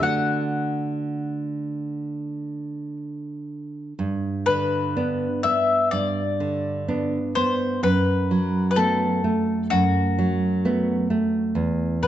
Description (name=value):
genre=romantic duo for mandolin and classical guitar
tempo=62 BPM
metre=4/4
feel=uneven beats, rubato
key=G major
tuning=A4 = 440 Hz
part: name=mandolin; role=melody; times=0.0-12.1 s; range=F#4 to F#5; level=-24 LUFS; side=left 4 dB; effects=none
part: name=nylon-string guitar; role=accompaniment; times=0.0-12.1 s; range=E2 to F#4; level=-23 LUFS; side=right 2 dB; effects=none
room=moderate recital hall reverb, RT60 1.4 s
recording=dark, warm production, nothing above 8.0 kHz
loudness=-21 LUFS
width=side -12 dB against mid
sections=0.0-4.0 A section; 4.0-12.1 B section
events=none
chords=0.0 D; 4.0 G; 7.8 B5/F#; 11.6 N.C.